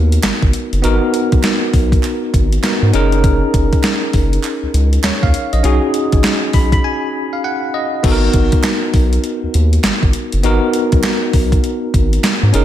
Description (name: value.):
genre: R&B, new jack swing.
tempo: 100 BPM.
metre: 4/4.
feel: swing 62% on 16ths.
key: G# minor.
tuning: A4 = 440 Hz.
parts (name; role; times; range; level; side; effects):
barky tine electric piano; accompaniment; 0.0-12.6 s; B3 to B5; -17 LUFS; equal; fast stereo tremolo, slapback echo.
round analog bass; bass; 0.0-12.6 s; F#1 to G#2; -15 LUFS; equal; none.
crisp 8-bit digital drum machine; drums; 0.1-12.6 s; crash cymbal, hi-hat, kick drum, snare drum; -16 LUFS; equal; none.
group handclap; percussion; 0.2-12.4 s; none; -30 LUFS; right 6 dB; none.
room: light reverb.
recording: none.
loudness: -12 LUFS.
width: side -12 dB against mid.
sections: 0.0-8.0 A section; 8.0-12.6 B section.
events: tine electric piano fill 6.2-8.0; break 6.8-8.0.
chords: 0.0 G#m7; 2.9 F#6; 5.6 B6; 8.0 G#m7.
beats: 0.24 | 0.84 1.44 2.04 2.64 | 3.24 3.84 4.44 5.04 | 5.64 6.24 6.84 7.44 | 8.04 8.64 9.24 9.84 | 10.44 11.04 11.64 12.24.